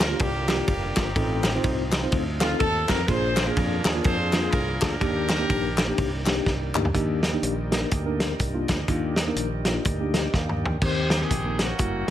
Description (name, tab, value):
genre	uptempo gospel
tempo	124 BPM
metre	4/4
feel	swing 60% on 8ths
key	Eb major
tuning	A4 = 441 Hz
part	clear horn section	melody	0.0-6.2, 10.8-12.1 s	Bb3 to C5	-28 LUFS	equal	none
part	tonewheel organ	sustained chords	0.0-12.1 s	D3 to G5	-34 LUFS	right 4 dB	slow rotary speaker
part	modern bright fingered electric bass	bass	0.0-12.1 s	F1 to F2	-29 LUFS	equal	none
part	warm soul drum kit	drums	0.0-12.1 s	crash cymbal, hi-hat, kick drum, ride cymbal, snare drum, toms	-25 LUFS	equal	none
part	group handclap	percussion	0.0-6.8 s	none	-32 LUFS	left 4 dB	none
part	mellow tine electric piano	accompaniment	0.1-12.0 s	A2 to G5	-28 LUFS	left 1 dB	medium stereo tremolo
room	light reverb, small room ambience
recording	none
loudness	-22 LUFS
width	side -12 dB against mid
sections	0.0-6.9 A section; 6.9-10.8 B section; 10.8-12.1 C section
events	drum fill 6.5-6.9, 10.3-10.8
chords	0.0 Gm7; 1.2 F7/A; 3.1 Bb7; 5.0 Ebmaj7; 10.8 Eb6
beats	0.19 0.68 | 1.16 1.64 2.12 2.60 | 3.08 3.56 4.05 4.53 | 5.01 5.49 5.98 6.46 | 6.94 7.43 7.91 8.40 | 8.88 9.37 9.85 10.34 | 10.82 11.30 11.79